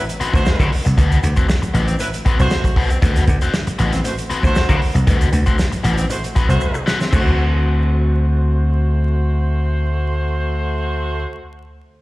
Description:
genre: funk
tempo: 117 BPM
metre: 4/4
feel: straight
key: D mixolydian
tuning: A4 = 440 Hz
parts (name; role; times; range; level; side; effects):
- clear horn section; second line; 0.0-11.2 s; F#3 to C5; -25 LUFS; equal; slapback echo
- warm soul drum kit; drums; 0.1-7.3 s; crash cymbal, hi-hat, kick drum, snare drum; -19 LUFS; equal; none
- egg shaker; percussion; 0.1-7.4 s; none; -40 LUFS; left 2 dB; none
- crunchy overdriven guitar; accompaniment; 0.2-11.3 s; C4 to C5; -24 LUFS; left 4 dB; wah, slapback echo
- vintage slap bass; bass; 0.2-11.2 s; A1 to D3; -16 LUFS; equal; none
room: studio reverb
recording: live gig heard through the venue's PA, recital hall reverb, vinyl crackle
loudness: -15 LUFS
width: side -19 dB against mid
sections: 0.0-7.1 A section; 7.1-11.2 B section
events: drum fill 6.6-7.1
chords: 0.0 D13; 7.1 D7

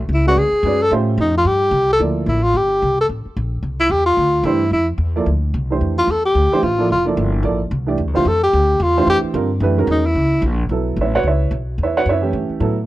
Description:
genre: modal jazz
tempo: 220 BPM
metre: 4/4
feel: swing 59% on 8ths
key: D minor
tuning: A4 = 440 Hz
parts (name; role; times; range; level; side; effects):
- upright bass; bass; 0.0-12.9 s; F1 to A2; -20 LUFS; equal; none
- breathy tenor saxophone; melody; 0.1-10.4 s; D#4 to A4; -16 LUFS; left 1 dB; none
- dark upright piano; accompaniment; 0.3-2.4, 4.4-12.8 s; D3 to F#5; -20 LUFS; right 4 dB; none
room: studio reverb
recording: dry, close 1970s-style studio recording, tape saturation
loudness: -15 LUFS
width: side -16 dB against mid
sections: 0.0-2.0 A section; 2.0-10.7 A section; 10.7-12.9 A section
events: tenor saxophone solo 0.0-10.7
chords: 0.0 E7sus2 (rootless); 0.9 A7alt; 2.0 Dm11; 9.6 F#13; 10.7 B9sus4

